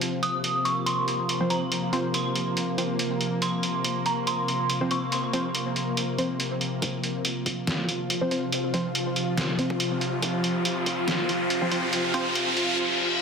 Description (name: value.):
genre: deep dubstep.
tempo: 141 BPM.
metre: 4/4.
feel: swing 54% on 16ths, half-time.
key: unclear.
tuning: A4 = 440 Hz.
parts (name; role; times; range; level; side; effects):
bowed-like drone; sustained chords; 0.0-13.2 s; C3 to F4; -28 LUFS; equal; built-in reverb.
trip hop sampler-style drum kit; drums; 0.0-12.7 s; hi-hat, snare drum; -30 LUFS; right 1 dB; overdrive, studio reverb.
dark detuned synth bell; melody; 0.2-6.4 s; Bb5 to Eb6; -29 LUFS; right 1 dB; chorus, phaser, dub echo.
filtered dub chord stab; stabs; 1.4-12.3 s; F3 to C5; -31 LUFS; equal; chorus, dub echo.
electronic kick drum; drums; 6.8-11.0 s; none; -34 LUFS; left 1 dB; overdrive, high-pass filter on kick, studio reverb.
riser and reverse cymbal; sound effects; 9.3-13.2 s; none; -29 LUFS; equal; none.
room: moderate digital room reverb, RT60 1.1 s.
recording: dense, heavily limited modern master, high-pass filter.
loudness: -24 LUFS.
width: side -5 dB against mid.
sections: 0.0-6.8 A section; 6.8-13.2 B section.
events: filter sweep on synth drone 0.0-6.8, 6.8-13.2; build-up 6.8-13.2; riser 9.3-12.8; reverse cymbal 12.8-13.2.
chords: 0.0 F5.